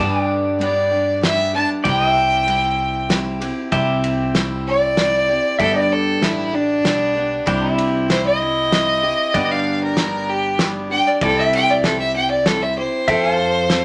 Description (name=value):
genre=honky-tonk and classic country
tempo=96 BPM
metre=3/4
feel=straight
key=C major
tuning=A4 = 440 Hz
part: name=picked steel-string acoustic guitar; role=accompaniment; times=0.0-13.8 s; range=G2 to A4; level=-25 LUFS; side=equal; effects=none
part: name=pedal steel guitar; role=sustained chords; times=0.0-13.8 s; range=E4 to A5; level=-26 LUFS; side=equal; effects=none
part: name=upright bass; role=bass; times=0.0-13.8 s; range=G1 to G2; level=-31 LUFS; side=equal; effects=none
part: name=clear fiddle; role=second line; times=0.6-13.8 s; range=D4 to A5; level=-20 LUFS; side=equal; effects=none
part: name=cloth-damped thuddy drum kit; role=drums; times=0.6-13.8 s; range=kick drum, ride cymbal, snare drum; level=-25 LUFS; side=equal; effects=none
room=moderate studio reverb, RT60 0.6 s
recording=none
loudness=-18 LUFS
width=mono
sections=0.0-3.7 A section; 3.7-13.8 B section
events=fiddle solo 0.0-3.7, 3.7-13.8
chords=0.0 G; 1.9 C; 5.6 G; 7.5 C; 9.3 G; 11.2 C; 13.1 F